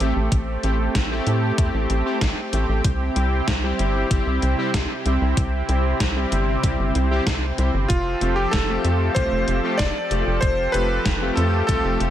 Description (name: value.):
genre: synthwave.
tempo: 95 BPM.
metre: 4/4.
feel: straight.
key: unclear.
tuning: A4 = 441 Hz.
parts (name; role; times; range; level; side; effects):
lush unison pad; sustained chords; 0.0-12.1 s; C3 to A4; -26 LUFS; right 1 dB; chorus, sidechain pumping.
analog synth brass; stabs; 0.0-12.1 s; G3 to G4; -27 LUFS; left 1 dB; chorus, ping-pong delay.
tight sequencer bass; bass; 0.0-12.1 s; F1 to A2; -23 LUFS; equal; none.
gated 80s digital drum machine; drums; 0.0-12.1 s; hi-hat, snare drum; -29 LUFS; left 1 dB; gated reverb, gated reverb snare.
electronic kick drum; drums; 0.3-11.8 s; none; -23 LUFS; equal; none.
bright electric grand piano; melody; 7.9-12.1 s; F4 to D5; -24 LUFS; equal; ping-pong delay.
room: little or no reverb.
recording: none.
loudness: -19 LUFS.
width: side -11 dB against mid.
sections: 0.0-12.1 A section.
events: none.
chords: 0.0 Am7; 2.8 C; 7.9 Fadd9.